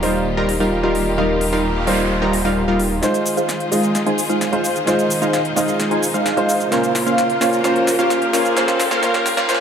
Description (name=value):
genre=EDM, festival progressive house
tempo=130 BPM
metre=4/4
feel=straight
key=F minor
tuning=A4 = 440 Hz
part: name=warm grand piano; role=accompaniment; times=0.0-9.6 s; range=Bb2 to Eb5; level=-20 LUFS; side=equal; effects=tape echo
part: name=clear studio string section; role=sustained chords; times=0.0-9.6 s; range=Db3 to C5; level=-26 LUFS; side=left 1 dB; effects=none
part: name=supersaw stab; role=riff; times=0.0-9.6 s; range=G3 to Bb5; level=-20 LUFS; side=right 1 dB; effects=low-pass filter, tape echo
part: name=wide detuned saw bass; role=bass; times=0.0-3.0 s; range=Eb1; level=-25 LUFS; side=left 1 dB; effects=chorus
part: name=big-room dance drum kit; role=drums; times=0.0-9.6 s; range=cabasa, hi-hat, snare drum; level=-25 LUFS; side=left 1 dB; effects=overdrive, high-pass filter on hats, high-pass filter on snare, high-pass filter on perc
part: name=noise sweep and riser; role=sound effects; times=1.7-9.6 s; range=none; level=-29 LUFS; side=equal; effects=none
part: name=wide unison lead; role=arpeggios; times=3.0-9.6 s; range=F5 to Ab5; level=-23 LUFS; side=equal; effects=lush chorus, tape echo
room=light reverb, digital ambience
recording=high-pass filter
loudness=-15 LUFS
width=side -7 dB against mid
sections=0.0-3.0 A section; 3.0-9.6 B section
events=noise sweep 1.7-3.0; build-up 3.0-9.6; drum fill 3.0-9.6; filter sweep on supersaw synth 3.0-9.6; filter sweep on analog synth lead 3.0-9.6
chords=0.0 Ebadd9; 3.0 Fm7; 6.7 Bbmadd9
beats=0.26 0.72 | 1.18 1.64 2.10 2.56 | 3.03 3.49 3.95 4.41 | 4.87 5.33 5.80 6.26 | 6.72 7.18 7.64 8.10 | 8.56 9.03 9.49